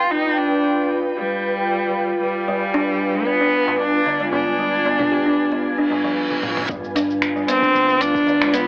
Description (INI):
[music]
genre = organic downtempo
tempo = 114 BPM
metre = 4/4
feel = straight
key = unclear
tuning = A4 = 440 Hz
[part]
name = clear cello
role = melody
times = 0.0-8.7 s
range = G3 to F4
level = -19 LUFS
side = equal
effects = cassette tape, analog delay
[part]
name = granular cloud pad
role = sustained chords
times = 0.0-8.7 s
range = F4 to Ab5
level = -24 LUFS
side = equal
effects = built-in reverb, sidechain pumping, cassette tape
[part]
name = kalimba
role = arpeggios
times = 2.5-8.6 s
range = D3 to G4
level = -22 LUFS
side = equal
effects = cassette tape, tape echo
[part]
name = darbuka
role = percussion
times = 2.7-6.0 s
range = none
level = -32 LUFS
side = equal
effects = none
[part]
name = dusty soul sampler-style drum kit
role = drums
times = 5.0-8.7 s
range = congas, finger snaps, hi-hat, shaker, toms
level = -26 LUFS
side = equal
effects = none
[part]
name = reverse cymbal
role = sound effects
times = 5.8-6.7 s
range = none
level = -25 LUFS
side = right 1 dB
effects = none
[part]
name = woody fretless electric bass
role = bass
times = 6.7-8.7 s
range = G1 to D2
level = -38 LUFS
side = equal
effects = ensemble chorus, sidechain pumping
[part]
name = electronic kick drum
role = drums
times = 6.7-8.2 s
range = none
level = -33 LUFS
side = equal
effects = none
[sound]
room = wet booth ambience, RT60 0.2 s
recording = home recording on cassette, AM radio sound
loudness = -17 LUFS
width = side -25 dB against mid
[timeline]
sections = 0.0-6.7 A section; 6.7-8.7 B section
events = reverse cymbal 5.8-6.7; drum fill 6.3-6.7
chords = 0.0 G7b9; 6.7 G7